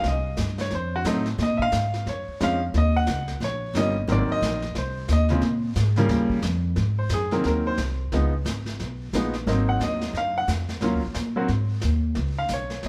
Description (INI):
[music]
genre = jazz piano trio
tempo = 178 BPM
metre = 4/4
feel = swing 61% on 8ths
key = Ab mixolydian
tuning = A4 = 440 Hz
[part]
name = bright upright piano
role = melody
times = 0.0-12.9 s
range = Db3 to Gb5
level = -28 LUFS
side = equal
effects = none
[part]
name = upright bass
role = bass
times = 0.0-12.9 s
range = G1 to Bb2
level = -27 LUFS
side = equal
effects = none
[part]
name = vintage brush drum kit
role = drums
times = 0.0-12.9 s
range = brushed snare drum, hi-hat, kick drum, snare drum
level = -36 LUFS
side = equal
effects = none
[sound]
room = moderate large studio reverb, RT60 1.2 s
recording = band playing live in one room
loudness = -24 LUFS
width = mono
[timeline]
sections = 0.0-6.8 A section; 6.8-12.9 B section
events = upright piano solo 0.0-6.8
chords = 0.1 Cm; 0.7 F7b9; 1.4 Bbm7; 2.7 Eb7; 4.1 Ab7; 5.4 Bb7(no3); 6.1 Eb9; 6.8 Ab7; 8.1 Db7; 9.5 Ab7; 10.8 Ebm7; 11.5 Ab5; 12.2 Db5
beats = | 0.05 0.39 0.72 1.06 | 1.40 1.73 2.07 2.41 | 2.74 3.08 3.42 3.75 | 4.09 4.42 4.76 5.10 | 5.43 5.77 6.11 6.44 | 6.78 7.11 7.45 7.79 | 8.12 8.46 8.80 9.13 | 9.47 9.81 10.14 10.48 | 10.82 11.15 11.49 11.82 | 12.16 12.50 12.83